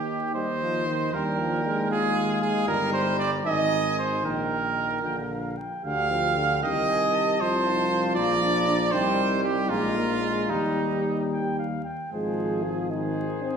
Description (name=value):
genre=classical, brass quintet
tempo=72-79 BPM (dotted quarters)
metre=6/8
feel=rubato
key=Eb major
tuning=A4 = 442 Hz
part: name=clear cornet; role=melody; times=0.0-13.6 s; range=C5 to Bb5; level=-33 LUFS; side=left 3 dB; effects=none
part: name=bright trumpet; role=second line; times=0.0-13.6 s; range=Eb4 to F5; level=-26 LUFS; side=right 4 dB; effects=none
part: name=bright trombone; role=accompaniment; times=0.0-13.6 s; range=D3 to Bb3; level=-31 LUFS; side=right 1 dB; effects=none
part: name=mellow French horn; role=accompaniment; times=0.0-13.6 s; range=Ab3 to G4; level=-33 LUFS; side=left 4 dB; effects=none
part: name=mellow tuba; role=bass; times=0.0-13.6 s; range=G1 to Eb2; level=-30 LUFS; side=equal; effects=none
room=wet recital hall reverb, RT60 1.4 s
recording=recorded in a church or concert hall, vinyl crackle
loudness=-23 LUFS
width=side -6 dB against mid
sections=0.0-12.1 A section; 12.1-13.6 B section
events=none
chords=0.0 Eb; 1.1 Bb7/Eb; 2.7 Eb/G; 3.5 Ab; 4.2 Eb/Bb; 5.0 Bb; 5.8 G5/D; 6.6 Cm; 7.4 F7/C; 8.2 Bb; 8.9 Cm; 9.7 Bb5; 10.5 Eb; 12.1 Ab